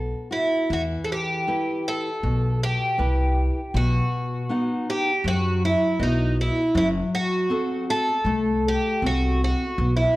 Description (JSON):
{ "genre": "fado-style ballad", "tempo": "79 BPM", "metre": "4/4", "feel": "rubato", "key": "E harmonic minor", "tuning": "A4 = 437 Hz", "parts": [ { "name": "nylon-string guitar", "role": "accompaniment", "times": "0.0-10.2 s", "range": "B2 to F#5", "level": "-27 LUFS", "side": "left 1 dB", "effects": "none" }, { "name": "upright bass", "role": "bass", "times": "0.0-10.0 s", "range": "F#1 to F#2", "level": "-24 LUFS", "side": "equal", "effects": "none" }, { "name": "picked twelve-string acoustic guitar", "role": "melody", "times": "0.3-10.2 s", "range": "D#4 to A4", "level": "-24 LUFS", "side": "right 1 dB", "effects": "none" } ], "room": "moderate recital hall reverb, RT60 1.5 s", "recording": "dark, warm production", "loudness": "-21 LUFS", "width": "side -18 dB against mid", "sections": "0.7-10.2 A section", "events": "none", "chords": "0.0 B5; 0.7 Em; 3.8 B; 6.8 F#dim" }